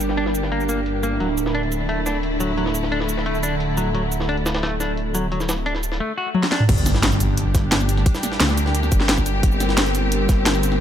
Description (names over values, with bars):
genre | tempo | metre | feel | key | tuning
dark technical drum and bass | 175 BPM | 4/4 | straight | unclear | A4 = 438 Hz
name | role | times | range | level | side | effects
rich studio string section | sustained chords | 0.0-10.8 s | D3 to G4 | -28 LUFS | equal | sidechain pumping
phased detuned saw bass | bass | 0.0-10.8 s | D1 to D2 | -23 LUFS | equal | phaser, overdrive
drum and bass drum kit | drums | 0.0-10.8 s | cabasa, crash cymbal, hi-hat, snare drum, toms | -22 LUFS | equal | overdrive
jungle sampler-style drum kit | drums | 0.0-10.7 s | hi-hat, snare drum | -29 LUFS | equal | high-pass filter on hats, low-pass filter on hats, high-pass filter on snare, low-pass filter on snare
deep dark ambient pad | texture | 0.0-10.8 s | D4 to G5 | -28 LUFS | equal | chorus, built-in reverb, sidechain pumping
semi-hollow electric guitar | arpeggios | 0.2-6.6 s | F#3 to F#4 | -26 LUFS | left 1 dB | sidechain pumping, digital delay
electronic kick drum | drums | 6.7-10.4 s | none | -18 LUFS | equal | none
impact | sound effects | 6.7-8.1 s | none | -26 LUFS | equal | none
room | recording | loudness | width
light reverb | none | -18 LUFS | side -10 dB against mid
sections
0.0-6.7 A section; 6.7-10.8 B section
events
drum fill 6.3-6.7; drop 6.7-10.8; impact 6.7-8.1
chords
0.0 Gm; 1.2 D; 6.7 Gm